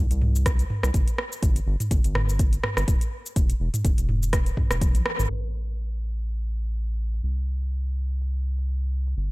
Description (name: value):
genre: afro house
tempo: 124 BPM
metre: 4/4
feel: swing 55% on 16ths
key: unclear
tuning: A4 = 443 Hz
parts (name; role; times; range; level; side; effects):
- round analog bass; bass; 0.0-9.3 s; D1 to C2; -25 LUFS; equal; sidechain pumping
- afro-pop drum kit; drums; 0.1-9.3 s; cabasa, hi-hat, rim click, toms; -28 LUFS; equal; low-pass filter on hats, low-pass filter on toms, low-pass filter on perc, low-pass filter on snare
- electronic kick drum; drums; 0.5-4.9 s; none; -22 LUFS; equal; none
room: little or no reverb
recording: low-pass filter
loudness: -22 LUFS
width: side -22 dB against mid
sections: 0.0-5.3 A section; 5.3-9.3 B section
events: drum fill 4.8-5.3; band accent 5.1; filter sweep 5.3-9.3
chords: none